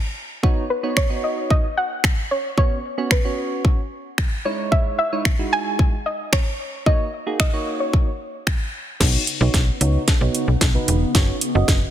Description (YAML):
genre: dance-pop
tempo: 112 BPM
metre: 4/4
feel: straight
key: B major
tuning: A4 = 440 Hz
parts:
  - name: soft round pluck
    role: melody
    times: 0.0-8.7 s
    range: B4 to G#5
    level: -24 LUFS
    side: equal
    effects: chorus, ping-pong delay
  - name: soft electric-piano-like synth keys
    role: accompaniment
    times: 0.4-11.8 s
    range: G#3 to D#5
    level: -26 LUFS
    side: right 3 dB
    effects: chorus, sidechain pumping, low-pass filter
  - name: house drum kit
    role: drums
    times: 0.4-11.8 s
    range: crash cymbal, finger snaps, hi-hat, kick drum, snare drum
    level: -19 LUFS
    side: equal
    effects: soft clipping on snare
  - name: glassy FM pad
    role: sustained chords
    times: 9.0-11.9 s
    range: C#3 to F#4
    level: -28 LUFS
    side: equal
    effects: ensemble chorus, built-in reverb, sidechain pumping, low-pass filter
  - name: slap-like FM bass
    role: bass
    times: 9.0-11.9 s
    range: E1 to C#2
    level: -19 LUFS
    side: equal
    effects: sidechain pumping
room: light reverb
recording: dense, heavily limited modern master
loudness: -18 LUFS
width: side -11 dB against mid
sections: 0.0-9.0 A section; 9.0-11.9 B section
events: build-up 9.0-11.9; drum fill 9.0-11.9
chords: 0.4 Badd9; 2.6 F#sus4; 4.5 C#madd9; 6.9 D#m7; 9.0 Badd9; 11.1 F#sus4